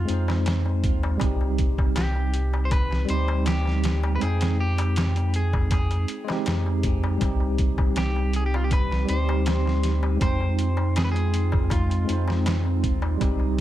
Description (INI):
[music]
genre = trip hop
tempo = 80 BPM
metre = 4/4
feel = straight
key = unclear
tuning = A4 = 442 Hz
[part]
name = clean electric guitar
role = melody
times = 0.0-12.4 s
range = F4 to C5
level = -33 LUFS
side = equal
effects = tape echo
[part]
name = tine electric piano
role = accompaniment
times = 0.0-13.6 s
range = G3 to G5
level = -29 LUFS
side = right 1 dB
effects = medium stereo tremolo, harmonic tremolo, vintage 12-bit sampler grit, tape echo
[part]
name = warm sub bass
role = bass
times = 0.0-13.6 s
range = C2 to F2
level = -24 LUFS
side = equal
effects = none
[part]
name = trip hop sampler-style drum kit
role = drums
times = 0.1-13.6 s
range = hi-hat, kick drum, snare drum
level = -26 LUFS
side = equal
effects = overdrive
[part]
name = darbuka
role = percussion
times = 0.3-13.5 s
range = none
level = -37 LUFS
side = left 4 dB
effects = none
[part]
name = warbly tape-like pad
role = sustained chords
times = 7.9-13.6 s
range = G3 to G4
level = -33 LUFS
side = right 3 dB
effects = chorus, built-in reverb
[sound]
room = digital ambience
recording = none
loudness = -21 LUFS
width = side -13 dB against mid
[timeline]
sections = 0.0-13.6 A section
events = none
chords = 0.0 Fm7; 1.2 Cm; 4.2 Fm7; 7.2 Cm; 10.2 Fm7